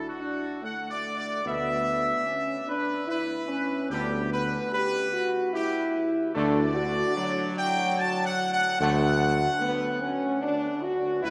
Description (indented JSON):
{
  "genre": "classical",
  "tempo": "74 BPM",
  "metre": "3/4",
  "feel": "straight",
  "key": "D major",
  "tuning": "A4 = 439 Hz",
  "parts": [
    { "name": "clear trumpet section", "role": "melody", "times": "0.0-11.3 s", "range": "F#4 to A5", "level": "-31 LUFS", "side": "equal", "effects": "none" },
    { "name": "mellow French horn section", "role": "sustained chords", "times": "0.0-11.3 s", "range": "F#3 to G4", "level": "-31 LUFS", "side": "equal", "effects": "none" },
    { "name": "bright trombone section", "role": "sustained chords", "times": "1.4-11.3 s", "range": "B2 to B3", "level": "-39 LUFS", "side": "equal", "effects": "none" },
    { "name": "mellow tuba", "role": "bass", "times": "1.4-11.3 s", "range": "D2", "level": "-34 LUFS", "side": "equal", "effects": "none" }
  ],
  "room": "wet cathedral reverb, RT60 7.2 s",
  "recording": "none",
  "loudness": "-27 LUFS",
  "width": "mono",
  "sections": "0.0-11.3 A section",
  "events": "none",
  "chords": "0.0 D; 1.5 E5/D; 3.9 G/D; 6.4 D"
}